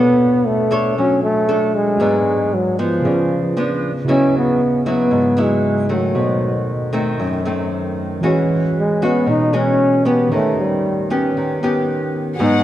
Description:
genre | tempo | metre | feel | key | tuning
bossa nova | 115 BPM | 4/4 | straight | C# minor from 4.1 s | A4 = 436 Hz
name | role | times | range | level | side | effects
breathy trombone | melody | 0.0-12.6 s | E#3 to D#4 | -17 LUFS | equal | none
nylon-string guitar | accompaniment | 0.0-12.6 s | F#2 to C#5 | -19 LUFS | left 1 dB | lush chorus
tine electric piano | accompaniment | 0.0-12.6 s | B2 to D#5 | -24 LUFS | right 2 dB | none
warm chamber string section | sustained chords | 12.4-12.6 s | B3 to F#5 | -19 LUFS | left 2 dB | none
room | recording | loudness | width
wet church reverb, RT60 3.1 s | dreamy mix soaked in reverb | -15 LUFS | side -12 dB against mid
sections
0.0-4.1 A section; 4.1-12.6 B section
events
none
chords
0.0 Bm9; 2.0 G#m7b5; 3.0 C#7b9; 4.1 C#m11; 6.2 B7b9; 8.2 E69; 10.3 D#aug7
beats
0.44 0.96 1.48 | 2.00 2.52 3.04 3.56 | 4.08 4.60 5.12 5.64 | 6.16 6.68 7.20 7.72 | 8.24 8.76 9.28 9.80 | 10.32 10.84 11.36 11.88 | 12.40

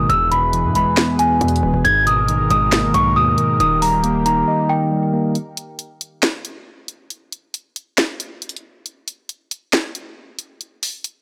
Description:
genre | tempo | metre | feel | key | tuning
hip hop, trap | 137 BPM | 4/4 | half-time | unclear | A4 = 440 Hz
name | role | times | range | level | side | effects
celesta | melody | 0.0-5.3 s | G5 to G#6 | -19 LUFS | equal | low-pass filter, delay
mellow tine electric piano | accompaniment | 0.0-5.4 s | E2 to D#5 | -22 LUFS | equal | low-pass filter
warm analog pad | sustained chords | 0.0-5.3 s | B2 to B4 | -31 LUFS | equal | chorus
hard-hitting 808-style bass | bass | 0.0-4.4 s | D#1 to G#2 | -26 LUFS | equal | none
trap drum kit | drums | 0.1-11.1 s | handclaps, hi-hat, snare drum | -23 LUFS | equal | overdrive
room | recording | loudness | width
little or no reverb | blown-out, overdriven recording, overdrive | -17 LUFS | mono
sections
0.0-5.4 A section; 5.4-11.2 B section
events
break 4.5-5.4, 5.4-11.2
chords
0.1 E; 1.8 G#madd9; 3.6 D#; 5.4 N.C.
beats
| 0.10 0.53 0.97 1.41 | 1.85 2.29 2.72 3.16 | 3.60 4.04 4.48 4.91 | 5.35 5.79 6.23 6.67 | 7.10 7.54 7.98 8.42 | 8.86 9.29 9.73 10.17 | 10.61 11.04

